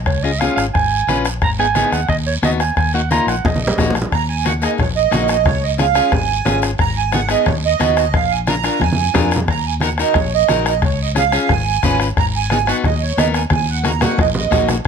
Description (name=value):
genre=latin, cumbia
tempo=179 BPM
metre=4/4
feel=straight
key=Eb minor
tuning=A4 = 441 Hz
part: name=fingered electric bass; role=bass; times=0.0-14.8 s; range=Ab1 to F2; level=-21 LUFS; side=equal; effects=none
part: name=growling clarinet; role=second line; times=0.1-3.9 s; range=Db5 to Bb5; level=-19 LUFS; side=right 6 dB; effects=none
part: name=bombo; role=percussion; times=0.1-14.9 s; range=none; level=-21 LUFS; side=left 3 dB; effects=none
part: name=congas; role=percussion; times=0.1-14.8 s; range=none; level=-23 LUFS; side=right 2 dB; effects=none
part: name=guiro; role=percussion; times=0.1-14.9 s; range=none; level=-30 LUFS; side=right 6 dB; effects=none
part: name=electric guitar at the edge of break-up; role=accompaniment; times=0.2-14.8 s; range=Bb3 to Cb5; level=-21 LUFS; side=left 7 dB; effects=none
part: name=accordion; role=melody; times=4.1-14.7 s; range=Db5 to Bb5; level=-18 LUFS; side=right 12 dB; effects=light tremolo tuning, slapback echo
room=light reverb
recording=close, detailed microphones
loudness=-14 LUFS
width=side -6 dB against mid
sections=0.0-4.1 A section; 4.1-14.9 B section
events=clarinet solo 0.0-4.1; drum fill 3.4-4.1, 8.8-9.5, 13.5-14.9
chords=0.1 Db; 1.4 Abm; 2.8 Ebm; 5.5 Db; 6.8 Abm; 8.1 Bb7; 9.5 Ebm; 10.8 Db; 12.2 Abm; 13.5 Ebm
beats=| 0.08 0.41 0.75 1.09 | 1.42 1.76 2.10 2.43 | 2.77 3.10 3.44 3.78 | 4.12 4.45 4.79 5.12 | 5.46 5.80 6.13 6.47 | 6.80 7.14 7.48 7.81 | 8.15 8.48 8.82 9.15 | 9.49 9.83 10.16 10.50 | 10.83 11.17 11.50 11.84 | 12.17 12.51 12.85 13.18 | 13.52 13.85 14.19 14.52 | 14.86